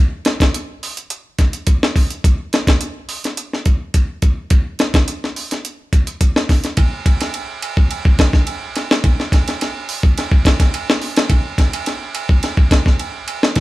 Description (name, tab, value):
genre	afrobeat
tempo	106 BPM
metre	4/4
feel	straight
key	none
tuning	none
part	breakbeat sampler-style drum kit	drums	0.2-13.6 s	hi-hat, kick drum, ride cymbal, snare drum	-14 LUFS	equal	none
room	light reverb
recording	band playing live in one room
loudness	-14 LUFS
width	side -18 dB against mid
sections	0.0-6.8 A section; 6.8-13.6 B section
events	none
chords	none